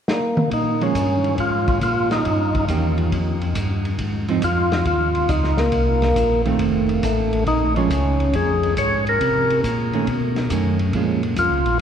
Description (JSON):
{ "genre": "soul jazz organ trio", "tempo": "138 BPM", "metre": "4/4", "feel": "swing 68% on 8ths", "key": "Bb dorian", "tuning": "A4 = 440 Hz", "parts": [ { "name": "percussive tonewheel organ", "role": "melody", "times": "0.1-11.8 s", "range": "A3 to Db5", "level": "-21 LUFS", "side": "equal", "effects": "slow rotary speaker" }, { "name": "vintage drum kit", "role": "drums", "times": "0.1-11.7 s", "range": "hi-hat, kick drum, ride cymbal, snare drum, toms", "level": "-27 LUFS", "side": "left 1 dB", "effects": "none" }, { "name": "mellow tonewheel organ", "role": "bass", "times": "0.5-11.8 s", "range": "F1 to C3", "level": "-22 LUFS", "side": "left 1 dB", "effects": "overdrive, chorus vibrato, slow rotary speaker" }, { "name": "hollow-body jazz guitar", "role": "accompaniment", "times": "0.8-11.2 s", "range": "Eb3 to G4", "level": "-26 LUFS", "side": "right 6 dB", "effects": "none" } ], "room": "wet cathedral reverb, RT60 6.1 s", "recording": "recorded in a church or concert hall", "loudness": "-17 LUFS", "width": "side -8 dB against mid", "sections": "0.5-11.8 A section", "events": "drum fill 0.1-0.5", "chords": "0.0 N.C.; 0.5 Bbm7; 2.3 Eb7; 4.0 Ab5; 5.7 Cm7; 6.6 F7; 7.5 Bbm7; 9.2 Bbmadd9; 10.1 B9; 10.9 Bbm7" }